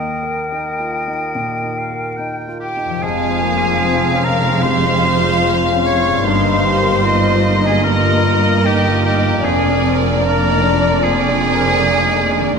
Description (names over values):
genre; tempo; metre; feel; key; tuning
cinematic, emotional film score for orchestra; 75 BPM; 4/4; uneven beats, rubato; F minor; A4 = 436 Hz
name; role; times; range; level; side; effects
clear oboe; second line; 0.0-12.6 s; G4 to G5; -22 LUFS; right 2 dB; none
hollow concert flute; second line; 0.0-12.6 s; G5 to Db6; -24 LUFS; left 1 dB; none
warm clarinet; second line; 0.0-2.7 s; Bb4; -29 LUFS; equal; none
warm grand piano; accompaniment; 0.0-12.6 s; Eb2 to Bb4; -22 LUFS; right 1 dB; none
concert harp; arpeggios; 0.0-12.6 s; F2 to Bb4; -27 LUFS; left 11 dB; none
clear studio violin section; second line; 2.6-12.6 s; G4 to Db5; -25 LUFS; left 1 dB; none
rich studio violin section; melody; 3.0-12.5 s; D5 to F5; -21 LUFS; left 2 dB; none
rich symphonic viola section; accompaniment; 3.0-12.6 s; Ab3 to Bb4; -24 LUFS; right 4 dB; none
warm French horn section; sustained chords; 3.0-12.6 s; Ab3 to G4; -22 LUFS; left 7 dB; none
rich symphonic cello section; bass; 3.0-12.5 s; F2 to G2; -20 LUFS; right 3 dB; none
warm symphonic double bass section; bass; 3.0-12.5 s; F1 to G1; -22 LUFS; right 3 dB; none
room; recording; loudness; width
moderate scoring stage reverb, RT60 1.6 s; none; -13 LUFS; side -5 dB against mid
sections
0.0-3.0 A section; 3.0-12.6 B section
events
none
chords
0.0 Eb; 3.0 Fm; 6.3 Eb/G; 9.4 Bb7/F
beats
0.52 1.35 2.19 | 3.03 3.84 4.65 5.46 | 6.26 7.06 7.87 8.65 | 9.44 10.23 11.02 11.80 | 12.57